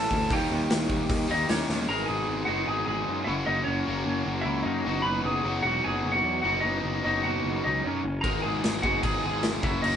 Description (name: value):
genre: punk rock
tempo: 151 BPM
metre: 4/4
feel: straight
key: B major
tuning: A4 = 443 Hz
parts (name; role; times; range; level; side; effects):
- lightly driven lead guitar; melody; 0.0-10.0 s; C#4 to B5; -28 LUFS; left 1 dB; none
- distorted electric guitar; riff; 0.0-10.0 s; A2 to G#4; -30 LUFS; equal; distortion
- fuzz picked electric bass; bass; 0.0-10.0 s; E1 to F#2; -32 LUFS; equal; overdrive
- big rock drum kit; drums; 0.1-1.8, 8.2-9.9 s; crash cymbal, hi-hat, kick drum, snare drum; -29 LUFS; equal; none
room: moderate stone room reverb, RT60 1.2 s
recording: band playing live in one room, nothing above 10.4 kHz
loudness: -24 LUFS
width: side -8 dB against mid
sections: 0.0-1.9 A section; 1.9-10.0 B section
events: drum fill 1.7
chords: 0.3 D#7; 1.9 G#m; 3.3 F#; 4.9 B; 8.2 G#m